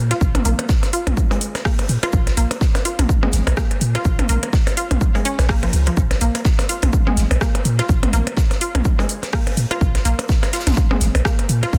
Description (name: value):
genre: minimal techno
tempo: 125 BPM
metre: 4/4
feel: swing 58% on 16ths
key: Bb minor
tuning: A4 = 440 Hz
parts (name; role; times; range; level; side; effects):
- punchy sub bass; bass; 0.0-11.8 s; Ab1 to Bb2; -20 LUFS; equal; sidechain pumping
- resonant blip pluck; riff; 0.1-11.7 s; F3 to F4; -28 LUFS; equal; chorus, sidechain pumping, digital delay
- big rock drum kit; drums; 0.1-11.8 s; hi-hat, shaker, snare drum; -36 LUFS; equal; high-pass filter on hats, high-pass filter on snare, high-pass filter on perc, high-pass filter on room
- house drum kit; drums; 0.1-11.7 s; hi-hat, rim click; -28 LUFS; equal; soft clipping on snare
- electronic percussion blips and toms; percussion; 0.1-11.7 s; none; -27 LUFS; equal; delay
- electronic kick drum; drums; 0.2-11.8 s; none; -20 LUFS; equal; none
room: studio reverb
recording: dense, heavily limited modern master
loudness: -18 LUFS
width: mono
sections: 0.0-11.8 A section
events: none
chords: none